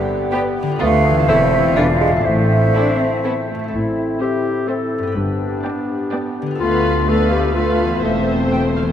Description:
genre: cinematic, playful, whimsical film cue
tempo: 125 BPM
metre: 3/4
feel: straight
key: A minor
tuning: A4 = 440 Hz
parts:
  - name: warm bassoon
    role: accompaniment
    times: 0.0-3.5 s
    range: D3 to A3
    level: -21 LUFS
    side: right 5 dB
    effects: none
  - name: clear French horn section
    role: sustained chords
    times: 0.0-8.9 s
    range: B3 to A4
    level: -23 LUFS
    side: left 1 dB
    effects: none
  - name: concert harp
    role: arpeggios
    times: 0.0-8.9 s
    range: G2 to B4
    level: -24 LUFS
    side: left 3 dB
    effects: none
  - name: muted studio violin section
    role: melody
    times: 0.3-8.8 s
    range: G#4 to G5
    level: -30 LUFS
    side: left 1 dB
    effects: none
  - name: mellow clarinet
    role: second line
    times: 0.3-8.9 s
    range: C4 to D5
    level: -22 LUFS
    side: left 4 dB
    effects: none
  - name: muted studio violin section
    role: second line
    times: 0.3-8.9 s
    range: E4 to D5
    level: -28 LUFS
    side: equal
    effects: none
  - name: small flute group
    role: second line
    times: 0.3-3.5 s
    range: D5 to F5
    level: -25 LUFS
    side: right 2 dB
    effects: none
  - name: muted chamber viola section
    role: accompaniment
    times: 0.3-8.9 s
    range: A3 to D4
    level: -27 LUFS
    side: right 2 dB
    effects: none
  - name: muted studio cello section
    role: bass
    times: 0.8-8.9 s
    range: D2 to D4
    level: -24 LUFS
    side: equal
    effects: none
  - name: muted studio double bass section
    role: bass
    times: 0.8-8.9 s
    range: E1 to D2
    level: -22 LUFS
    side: equal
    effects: none
room: wet cathedral reverb, RT60 5.5 s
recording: in a vast, echoing space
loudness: -15 LUFS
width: side -9 dB against mid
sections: 0.0-3.7 A section; 3.7-8.9 B section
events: none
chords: 0.0 G; 0.8 Bm7b5/D; 1.3 Am/E; 1.8 E7b9; 2.3 Am; 5.2 G; 6.6 Bm7b5/D; 8.0 Am/E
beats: 0.32 | 0.80 1.28 1.76 | 2.25 2.75 3.24 | 3.73 4.21 4.69 | 5.16 5.64 6.12 | 6.60 7.08 7.55 | 8.03 8.52

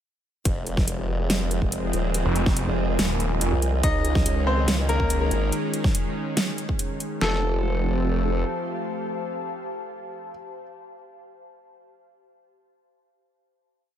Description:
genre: heavy wobble dubstep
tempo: 142 BPM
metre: 4/4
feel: half-time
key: F minor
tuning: A4 = 435 Hz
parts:
  - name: lush unison pad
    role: sustained chords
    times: 0.5-10.3 s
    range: Eb3 to Db4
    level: -30 LUFS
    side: equal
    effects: chorus, sidechain pumping
  - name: formant-sweep wobble bass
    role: bass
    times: 0.5-8.4 s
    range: Eb1 to Db2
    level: -24 LUFS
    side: equal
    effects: chorus, overdrive
  - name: dubstep drum kit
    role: drums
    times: 0.5-7.3 s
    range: kick drum, snare drum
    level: -25 LUFS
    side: equal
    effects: studio reverb
  - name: dubstep drum kit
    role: drums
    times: 0.5-7.1 s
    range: hi-hat, snare drum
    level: -27 LUFS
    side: right 1 dB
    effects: studio reverb
  - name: ethereal airy pad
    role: texture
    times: 1.3-10.5 s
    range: F4 to A5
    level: -34 LUFS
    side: right 1 dB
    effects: ensemble chorus, built-in reverb, sidechain pumping
  - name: snarling distorted saw bass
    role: bass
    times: 2.3-3.5 s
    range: Eb1 to F1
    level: -24 LUFS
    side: equal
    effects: distortion, overdrive
  - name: bright grand piano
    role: melody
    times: 3.8-10.3 s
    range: Bb3 to Eb5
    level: -30 LUFS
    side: left 2 dB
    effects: ping-pong delay
room: light reverb, digital ambience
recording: none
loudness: -22 LUFS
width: side -10 dB against mid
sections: 0.5-7.2 drop; 7.2-10.6 final chord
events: drop 0.5-7.2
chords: 0.5 Fm; 3.8 Dbsus2; 7.2 F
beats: | 0.45 0.88 1.30 1.72 | 2.14 2.57 2.99 3.41 | 3.83 4.26 4.68 5.10 | 5.52 5.95 6.37 6.79 | 7.21 7.64 8.06 8.48 | 8.90 9.33 9.75 10.17

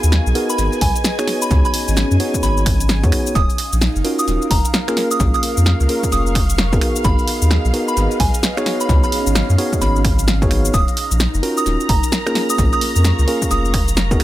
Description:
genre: UK garage, two-step garage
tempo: 130 BPM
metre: 4/4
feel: swing 62% on 16ths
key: unclear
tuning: A4 = 440 Hz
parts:
  - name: soft string machine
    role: sustained chords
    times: 0.0-14.2 s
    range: F5 to Bb5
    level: -29 LUFS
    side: equal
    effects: ensemble chorus, sidechain pumping
  - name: bell-like tine electric piano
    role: stabs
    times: 0.0-14.2 s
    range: Bb3 to Db5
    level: -22 LUFS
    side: equal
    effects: vintage 12-bit sampler grit, analog delay
  - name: soft dub sub bass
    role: bass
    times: 0.0-14.2 s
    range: Eb1 to Gb2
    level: -17 LUFS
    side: equal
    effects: none
  - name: punchy analog drum machine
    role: drums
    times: 0.0-14.2 s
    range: finger snaps, hi-hat, shaker, snare drum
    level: -22 LUFS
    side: equal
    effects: analog delay
  - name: airy breathy pad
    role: texture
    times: 0.0-14.2 s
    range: Db4 to Db6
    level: -27 LUFS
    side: right 2 dB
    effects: chorus, sidechain pumping
  - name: soft synth bell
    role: melody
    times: 0.5-13.7 s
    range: Ab5 to Eb6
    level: -24 LUFS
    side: right 1 dB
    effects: chorus, analog delay
  - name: electronic kick drum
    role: drums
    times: 0.8-14.2 s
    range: none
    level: -19 LUFS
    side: equal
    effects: none
room: little or no reverb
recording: echo-heavy mix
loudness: -14 LUFS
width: side -15 dB against mid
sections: 0.0-14.2 A section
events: none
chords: 0.0 Abm7; 1.3 Db9sus4; 3.4 Ebm9; 5.0 Bbm7; 6.8 Abm7; 8.7 Db9sus4; 10.7 Ebm9; 12.4 Bbm7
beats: 0.12 0.58 1.05 | 1.51 1.97 2.43 2.89 | 3.35 3.81 4.28 4.74 | 5.20 5.66 6.12 6.58 | 7.05 7.51 7.97 8.43 | 8.89 9.35 9.81 10.28 | 10.74 11.20 11.66 12.12 | 12.58 13.05 13.51 13.97

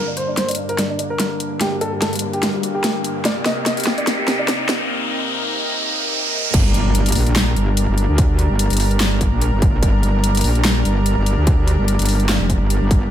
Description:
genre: heavy wobble dubstep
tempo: 146 BPM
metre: 4/4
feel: swing 54% on 16ths, half-time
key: G minor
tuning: A4 = 443 Hz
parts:
  - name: dark baby grand piano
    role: melody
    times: 0.0-4.8 s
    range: G3 to Eb5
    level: -23 LUFS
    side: equal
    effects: low-pass filter, digital delay
  - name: lush unison pad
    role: sustained chords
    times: 0.0-13.1 s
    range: G2 to Bb4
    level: -24 LUFS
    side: equal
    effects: chorus, sidechain pumping
  - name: riser and impact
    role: sound effects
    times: 0.0-8.2 s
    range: none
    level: -24 LUFS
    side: equal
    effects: none
  - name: dubstep drum kit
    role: drums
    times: 0.2-13.0 s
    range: crash cymbal, handclaps, hi-hat, snare drum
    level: -21 LUFS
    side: equal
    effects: studio reverb
  - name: metallic wobble bass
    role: bass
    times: 6.5-13.1 s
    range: F1 to D2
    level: -17 LUFS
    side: equal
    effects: chorus, overdrive
  - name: electronic kick drum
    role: drums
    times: 6.5-13.0 s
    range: none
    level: -17 LUFS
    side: equal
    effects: distortion, studio reverb
room: light reverb, digital ambience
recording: high-pass filter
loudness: -16 LUFS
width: side -10 dB against mid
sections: 0.0-6.5 A section; 6.5-13.1 B section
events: build-up 0.0-6.5; drum fill 0.0-4.9; riser 0.0-6.5; filter sweep 0.0-6.5; break 4.9-6.5; drop 6.5-13.1; impact 6.5-8.2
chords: 0.0 Gm; 3.2 Cm7; 6.5 Gm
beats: 0.37 0.78 1.20 | 1.61 2.02 2.43 2.84 | 3.25 3.66 4.07 4.48 | 4.89 5.30 5.72 6.13 | 6.54 6.95 7.36 7.77 | 8.18 8.59 9.00 9.41 | 9.83 10.24 10.65 11.06 | 11.47 11.88 12.29 12.70

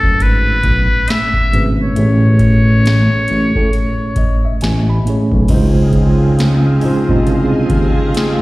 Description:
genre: R&B, neo-soul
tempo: 68 BPM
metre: 4/4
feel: swing 62% on 16ths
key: Db major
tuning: A4 = 440 Hz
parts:
  - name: trumpet with metal mute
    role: melody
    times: 0.0-4.6 s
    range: A4 to E5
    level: -17 LUFS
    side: left 2 dB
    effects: slapback echo
  - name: tine electric piano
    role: accompaniment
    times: 0.0-8.4 s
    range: A2 to B5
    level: -18 LUFS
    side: right 1 dB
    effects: overdrive, fast stereo tremolo
  - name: smooth synth bass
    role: bass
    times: 0.0-7.9 s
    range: Gb1 to A2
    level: -13 LUFS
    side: equal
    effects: none
  - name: booming analog drum machine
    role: drums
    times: 0.0-8.4 s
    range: crash cymbal, finger snaps, hi-hat, kick drum, snare drum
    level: -18 LUFS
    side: equal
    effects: none
  - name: string machine, violins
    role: sustained chords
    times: 5.5-8.4 s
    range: Ab4 to Ab5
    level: -26 LUFS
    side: equal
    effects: ensemble chorus
  - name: warm horn section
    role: stabs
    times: 5.5-8.4 s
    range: F3 to F4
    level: -23 LUFS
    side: equal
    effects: slapback echo
room: little or no reverb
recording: live gig heard through the venue's PA, recital hall reverb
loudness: -11 LUFS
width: side -19 dB against mid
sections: 0.0-5.5 A section; 5.5-8.4 B section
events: tine electric piano fill 3.7-5.5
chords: 0.0 Amaj9; 5.5 Dbmaj9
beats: 0.20 1.08 | 1.96 2.84 3.73 4.61 | 5.49 6.37 7.26 8.14

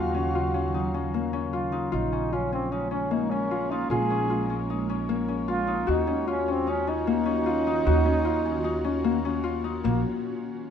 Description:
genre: contemporary instrumental, chamber music in an uneven meter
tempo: 152 BPM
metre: 5/4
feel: straight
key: Bb minor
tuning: A4 = 445 Hz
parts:
  - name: breathy flugelhorn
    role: melody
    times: 0.0-10.0 s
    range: Bb3 to Ab4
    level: -29 LUFS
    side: right 3 dB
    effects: none
  - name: ethereal airy pad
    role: sustained chords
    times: 0.0-10.0 s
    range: Db3 to F5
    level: -32 LUFS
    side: right 2 dB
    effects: ensemble chorus, built-in reverb
  - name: Celtic harp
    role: arpeggios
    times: 0.0-10.0 s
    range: Bb3 to Gb4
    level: -28 LUFS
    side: left 8 dB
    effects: none
  - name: upright bass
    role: bass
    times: 0.0-10.0 s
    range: Bb1 to Eb2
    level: -31 LUFS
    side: right 2 dB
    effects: none
room: moderate recital hall reverb, RT60 1.6 s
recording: dark, warm production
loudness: -24 LUFS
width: side -8 dB against mid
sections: 0.0-1.9 A section; 1.9-9.8 B section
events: none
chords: 0.0 Ebm9; 1.9 Bbm7; 5.9 Ebm9; 9.8 Bbm7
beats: 0.35 0.75 1.14 1.54 | 1.93 2.33 2.73 3.12 3.52 | 3.91 4.31 4.70 5.10 5.49 | 5.89 6.28 6.68 7.07 7.47 | 7.87 8.26 8.66 9.05 9.45 | 9.84

